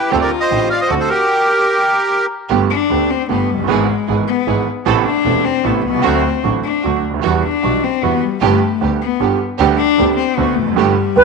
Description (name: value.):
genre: tango.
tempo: 152 BPM.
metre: 3/4.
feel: rubato.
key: G major.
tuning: A4 = 440 Hz.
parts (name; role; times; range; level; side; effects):
bandoneon; melody; 0.0-2.3 s; G4 to F5; -14 LUFS; right 1 dB; none.
warm cello; second line; 0.0-11.2 s; G3 to F#4; -18 LUFS; left 9 dB; slapback echo.
clear concert grand piano; accompaniment; 0.1-11.2 s; E1 to G#4; -18 LUFS; right 10 dB; none.
rich studio string section; stabs; 0.1-11.2 s; G3 to A4; -22 LUFS; right 9 dB; slapback echo.
bright double bass; bass; 0.1-11.2 s; E1 to E2; -22 LUFS; right 1 dB; none.
mellow concert flute; second line; 11.2 s; B4; -5 LUFS; right 3 dB; none.
room: wet spring reverb, RT60 1.4 s, small room ambience.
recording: 1960s-style stereo with parts hard left and right.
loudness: -13 LUFS.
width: side -4 dB against mid.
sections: 0.0-2.5 A section; 2.5-11.2 B section.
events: cello solo 2.5-11.2.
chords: 0.1 D7sus4; 0.9 D7; 1.3 N.C.; 2.5 Gadd9; 3.7 E/G#; 4.9 Amadd9; 6.0 D; 7.2 Emadd9; 8.4 G; 9.6 G/D; 10.4 D7.